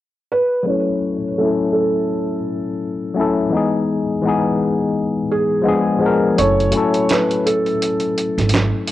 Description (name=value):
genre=lo-fi hip hop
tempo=84 BPM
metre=4/4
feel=swing 60% on 16ths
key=F# dorian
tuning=A4 = 440 Hz
part: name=felt-muted upright piano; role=melody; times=0.3-8.5 s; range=G#4 to C#5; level=-20 LUFS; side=right 2 dB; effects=low-pass filter, cassette tape, tape echo
part: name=tine electric piano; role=accompaniment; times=0.6-8.9 s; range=E3 to A#4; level=-18 LUFS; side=left 3 dB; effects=medium stereo tremolo, cassette tape, low-pass filter
part: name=upright bass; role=bass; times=6.4-8.7 s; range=F#1 to G#1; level=-18 LUFS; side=right 2 dB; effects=none
part: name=dusty soul sampler-style drum kit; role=drums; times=6.4-8.9 s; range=handclaps, hi-hat, snare drum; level=-21 LUFS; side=right 2 dB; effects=vintage 12-bit sampler grit, cassette tape
room=moderate spring reverb, RT60 1.6 s, small room reverb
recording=home recording on cassette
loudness=-16 LUFS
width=side -14 dB against mid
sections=0.7-6.4 A section; 6.4-8.9 B section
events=filter sweep 0.7-6.4; kick muted 6.4-8.9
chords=0.0 N.C.; 0.7 F#m7; 3.5 Emaj7; 5.7 Fdim7; 6.4 F#m7